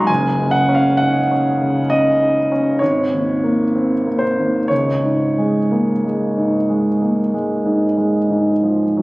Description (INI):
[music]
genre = classical, impressionist solo piano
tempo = 60-68 BPM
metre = 5/4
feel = rubato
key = unclear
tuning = A4 = 440 Hz
[part]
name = clear concert grand piano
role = solo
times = 0.0-9.0 s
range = Gb1 to Gb6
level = -14 LUFS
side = equal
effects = none
[sound]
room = wet scoring stage reverb, RT60 2.0 s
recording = recorded on a phone in the room, club reverb, compression, nothing above 10.5 kHz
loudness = -15 LUFS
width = side -20 dB against mid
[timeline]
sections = 0.0-9.0 A section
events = none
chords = 0.1 Gb5; 2.8 Absus24; 4.7 Db5